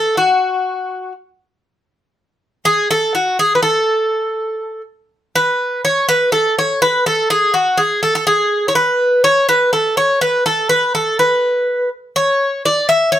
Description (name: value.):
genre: greek folk.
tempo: 245 BPM (eighths).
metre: 7/8.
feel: straight.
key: A major.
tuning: A4 = 440 Hz.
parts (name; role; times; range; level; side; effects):
Greek bouzouki; solo; 0.0-13.2 s; F#4 to E5; -13 LUFS; equal; none.
room: light reverb.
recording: none.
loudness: -13 LUFS.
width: side -11 dB against mid.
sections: 0.0-5.3 A section; 5.3-13.2 B section.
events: none.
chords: none.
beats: | 0.17 0.41 0.66 0.91 1.16 1.40 1.65 | 1.90 2.14 2.39 2.63 2.88 3.13 3.37 | 3.62 3.87 4.11 4.36 4.60 4.85 5.09 | 5.34 5.58 5.83 6.07 6.32 6.56 6.81 | 7.05 7.29 7.54 7.78 8.03 8.27 8.52 | 8.76 9.00 9.25 9.49 9.73 9.98 10.22 | 10.46 10.71 10.95 11.19 11.44 11.68 11.92 | 12.17 12.41 12.65 12.89 13.14.